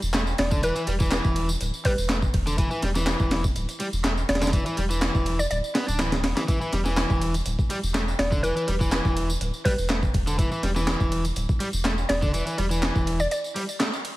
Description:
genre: breakbeat, breaks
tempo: 123 BPM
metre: 4/4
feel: straight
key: E minor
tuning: A4 = 440 Hz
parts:
  - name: saturated sub bass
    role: bass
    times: 0.0-13.3 s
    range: D1 to E1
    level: -27 LUFS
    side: equal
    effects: none
  - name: garage drum kit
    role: drums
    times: 0.0-14.1 s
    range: handclaps, ride cymbal, tambourine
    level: -32 LUFS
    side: equal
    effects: none
  - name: crunchy overdriven guitar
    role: riff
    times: 0.1-13.9 s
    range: D3 to D4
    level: -29 LUFS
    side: equal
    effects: tube saturation, vintage 12-bit sampler grit, digital delay
  - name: breakbeat sampler-style drum kit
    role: drums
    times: 0.1-14.2 s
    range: hi-hat, kick drum, snare drum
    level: -26 LUFS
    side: equal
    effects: none
  - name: mallet-like synth pluck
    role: melody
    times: 0.4-13.4 s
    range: B4 to D5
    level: -30 LUFS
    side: equal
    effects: chorus, AM radio sound, digital delay
room: little or no reverb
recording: vinyl crackle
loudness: -22 LUFS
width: side -17 dB against mid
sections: 0.0-14.2 A section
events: break 13.3-14.2; band accent 13.8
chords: none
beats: 0.14 | 0.63 1.12 1.60 2.09 | 2.58 3.07 3.56 4.04 | 4.53 5.02 5.51 6.00 | 6.48 6.97 7.46 7.95 | 8.44 8.92 9.41 9.90 | 10.39 10.87 11.36 11.85 | 12.34 12.82 13.31 13.80

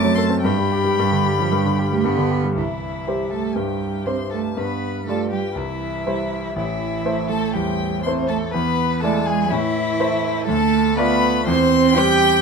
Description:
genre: quick classical-period movement for piano quartet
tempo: 121 BPM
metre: 4/4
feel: rubato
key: C major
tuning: A4 = 441 Hz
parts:
  - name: rich violin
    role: melody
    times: 0.0-12.4 s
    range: E5 to G6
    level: -26 LUFS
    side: left 9 dB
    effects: none
  - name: rich cello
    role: second line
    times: 0.0-12.4 s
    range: E3 to G4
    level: -22 LUFS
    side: right 12 dB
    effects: none
  - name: rich violin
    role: second line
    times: 0.0-12.4 s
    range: E4 to A5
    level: -27 LUFS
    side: left 2 dB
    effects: none
  - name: clear concert grand piano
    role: accompaniment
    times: 0.0-12.4 s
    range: A1 to D5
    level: -21 LUFS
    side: left 1 dB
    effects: none
room: light reverb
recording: close, detailed microphones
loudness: -18 LUFS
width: side -5 dB against mid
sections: 0.0-2.6 A section; 2.6-12.4 B section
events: none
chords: 0.4 G; 2.6 C; 4.6 G7; 5.6 C; 6.6 Am; 8.5 E7; 9.5 Am; 10.5 Dm; 11.5 C/E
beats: | 0.43 0.97 1.50 2.04 | 2.56 3.07 3.56 4.07 | 4.57 5.07 5.56 6.06 | 6.56 7.05 7.54 8.04 | 8.53 9.03 9.51 10.00 | 10.48 10.98 11.47 11.97

